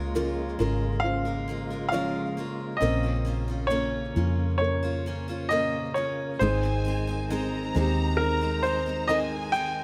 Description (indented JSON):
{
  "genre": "pop ballad",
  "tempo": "67 BPM",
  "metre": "4/4",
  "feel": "straight",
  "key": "Ab major",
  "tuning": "A4 = 440 Hz",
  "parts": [
    { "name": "warm baby grand piano", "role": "melody", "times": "0.0-9.8 s", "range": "Bb4 to G5", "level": "-31 LUFS", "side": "equal", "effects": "none" },
    { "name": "felt-muted upright piano", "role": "accompaniment", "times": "0.0-9.8 s", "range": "Ab2 to Db5", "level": "-34 LUFS", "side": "equal", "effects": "none" },
    { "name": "percussive tonewheel organ", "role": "sustained chords", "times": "0.0-9.8 s", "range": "Db3 to F4", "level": "-39 LUFS", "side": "equal", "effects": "overdrive, chorus vibrato, slow rotary speaker" },
    { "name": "picked steel-string acoustic guitar", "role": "arpeggios", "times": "0.0-9.8 s", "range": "Bb2 to C5", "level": "-39 LUFS", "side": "equal", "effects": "delay" },
    { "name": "vintage muted fingered electric bass", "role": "bass", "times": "0.0-9.8 s", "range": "Ab1 to F2", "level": "-32 LUFS", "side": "equal", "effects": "none" },
    { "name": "warm studio violin section", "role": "second line", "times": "6.4-9.8 s", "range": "Ab5 to Bb5", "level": "-37 LUFS", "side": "equal", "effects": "delay" }
  ],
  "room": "light reverb, small room ambience",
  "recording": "none",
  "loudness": "-27 LUFS",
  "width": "mono",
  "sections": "0.0-9.8 A section",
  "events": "none",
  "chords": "0.0 Db6; 2.8 Bbmadd9; 6.4 Ab",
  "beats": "0.16 1.04 1.93 | 2.82 3.71 4.61 5.51 | 6.42 7.32 8.21 9.10"
}